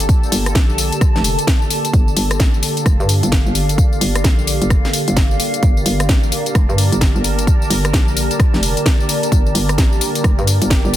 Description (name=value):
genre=bass house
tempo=130 BPM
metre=4/4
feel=swing 62% on 16ths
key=G minor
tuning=A4 = 440 Hz
part: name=sweeping resonant pad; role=sustained chords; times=0.0-11.0 s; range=D3 to Bb4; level=-23 LUFS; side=right 1 dB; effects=chorus, sidechain pumping
part: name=hollow knocking FM bass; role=bass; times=0.0-11.0 s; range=F1 to G2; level=-18 LUFS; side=equal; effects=overdrive, sidechain pumping
part: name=house drum kit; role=drums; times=0.0-11.0 s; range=hi-hat, rim click, snare drum, tambourine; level=-20 LUFS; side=left 2 dB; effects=none
part: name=granular cloud pad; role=texture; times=0.0-11.0 s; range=G4 to A5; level=-24 LUFS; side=equal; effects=built-in reverb, sidechain pumping
part: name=electronic kick drum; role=drums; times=0.1-10.8 s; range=none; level=-14 LUFS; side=equal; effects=none
room=digital ambience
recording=dense, heavily limited modern master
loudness=-13 LUFS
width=side -13 dB against mid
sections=0.0-11.0 A section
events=none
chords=0.0 Gmadd9